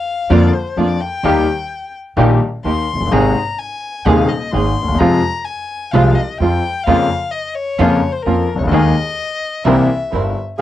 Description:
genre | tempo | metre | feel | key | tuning
tango | 128 BPM | 4/4 | rubato | Ab major | A4 = 439 Hz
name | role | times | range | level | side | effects
warm violin | second line | 0.0-10.4 s | Bb4 to C6 | -22 LUFS | left 4 dB | cassette tape
warm concert grand piano | accompaniment | 0.3-10.6 s | Eb1 to Ab4 | -15 LUFS | left 3 dB | cassette tape
muted studio string section | stabs | 0.3-10.3 s | Ab3 to Bb4 | -20 LUFS | right 7 dB | cassette tape
upright bass | bass | 0.3-10.3 s | F1 to F2 | -18 LUFS | right 2 dB | none
room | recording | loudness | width
moderate booth ambience, RT60 0.2 s | home recording on cassette | -13 LUFS | side -13 dB against mid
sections
0.0-10.6 A section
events
violin solo 0.0-10.6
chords
0.0 Bb/F; 1.2 Eb; 3.1 Abadd9; 5.0 Fm; 6.9 Bbm/F; 8.7 Ebsus4; 9.7 C7

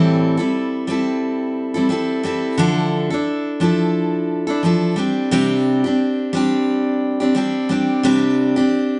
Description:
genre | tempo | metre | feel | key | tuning
pop | 88 BPM | 4/4 | swing 55% on 16ths | C major | A4 = 440 Hz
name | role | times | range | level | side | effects
picked steel-string acoustic guitar | solo | 0.0-9.0 s | A2 to A4 | -18 LUFS | equal | none
room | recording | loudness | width
moderate stone room reverb, RT60 1.0 s | band playing live in one room, nothing above 10.4 kHz | -19 LUFS | mono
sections
0.0-9.0 A section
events
none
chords
0.0 Am7; 2.6 Dmadd9; 5.0 Csus2

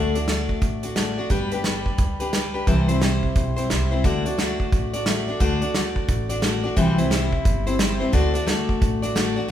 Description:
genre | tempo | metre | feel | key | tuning
honky-tonk and classic country | 176 BPM | 4/4 | swing 63% on 8ths | D mixolydian | A4 = 440 Hz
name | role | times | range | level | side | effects
picked steel-string acoustic guitar | accompaniment | 0.0-9.5 s | C3 to D5 | -23 LUFS | left 2 dB | none
upright bass | bass | 0.0-9.4 s | G1 to D2 | -26 LUFS | right 1 dB | none
natural country drum kit | drums | 0.2-9.3 s | hi-hat, kick drum, snare drum | -24 LUFS | right 1 dB | none
room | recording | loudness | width
moderate recital hall reverb, RT60 1.5 s | recorded in a church or concert hall | -20 LUFS | side -10 dB against mid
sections
0.0-9.5 A section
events
none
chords
0.0 D; 1.3 G; 2.7 C; 4.0 D; 6.8 C; 8.1 D

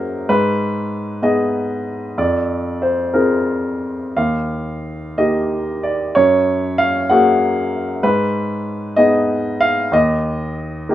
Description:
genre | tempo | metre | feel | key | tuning
classical, lyrical solo piano | 63 BPM (dotted quarters) | 6/8 | rubato | unclear | A4 = 440 Hz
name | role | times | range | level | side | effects
warm baby grand piano | solo | 0.0-10.9 s | Eb2 to Gb5 | -16 LUFS | equal | none
room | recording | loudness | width
light reverb | none | -15 LUFS | side -12 dB against mid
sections
0.0-10.9 A section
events
none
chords
0.3 Abm; 2.2 Fm; 4.2 Eb; 6.1 Gbadd9; 8.0 Abm; 9.9 N.C.

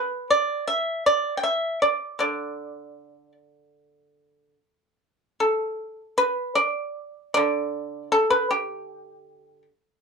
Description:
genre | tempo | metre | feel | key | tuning
chinese traditional, Chinese solo plucked strings | 70-80 BPM | 4/4 | rubato | D zhi mode | A4 = 440 Hz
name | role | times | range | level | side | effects
pipa | solo | 0.0-9.7 s | D3 to G5 | -22 LUFS | equal | none
room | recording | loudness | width
moderate small room reverb, RT60 0.5 s | dark, warm production | -22 LUFS | side -4 dB against mid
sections
0.0-5.8 A section; 5.8-10.0 B section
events
none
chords
none

